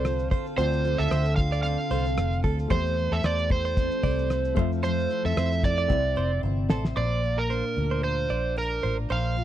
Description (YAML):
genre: acoustic pop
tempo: 113 BPM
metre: 4/4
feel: swing 55% on 16ths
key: unclear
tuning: A4 = 438 Hz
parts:
  - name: overdriven slide guitar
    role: melody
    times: 0.0-9.4 s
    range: Bb4 to F5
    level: -28 LUFS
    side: right 3 dB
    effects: tape echo
  - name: felt-muted upright piano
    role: accompaniment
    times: 0.0-7.0 s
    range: A3 to E5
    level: -35 LUFS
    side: left 8 dB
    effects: none
  - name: picked steel-string acoustic guitar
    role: accompaniment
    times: 0.0-9.4 s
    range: Bb2 to C5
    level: -31 LUFS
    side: left 1 dB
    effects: double-tracked left and right
  - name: direct-recorded clean electric guitar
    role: arpeggios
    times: 0.0-9.4 s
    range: A4 to D5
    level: -33 LUFS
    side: right 6 dB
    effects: none
  - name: vintage muted fingered electric bass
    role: bass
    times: 0.0-9.4 s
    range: F1 to F2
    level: -27 LUFS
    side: equal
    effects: none
  - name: cloth-damped thuddy drum kit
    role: drums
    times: 0.0-7.0 s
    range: kick drum, rim click, shaker, snare drum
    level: -26 LUFS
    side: equal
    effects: none
room: little or no reverb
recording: dry, close 1970s-style studio recording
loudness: -23 LUFS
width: side -12 dB against mid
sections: 0.0-7.0 A section; 7.0-9.4 B section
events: drum fill 5.9-7.0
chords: 0.0 Dm7; 2.7 Am7/E; 4.6 Fmaj7; 5.9 Cadd9; 7.0 Bb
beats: 0.05 | 0.58 1.11 1.64 2.17 | 2.71 3.24 3.77 4.30 | 4.83 5.37 5.90 6.43 | 6.97 7.50 8.03 8.57 | 9.10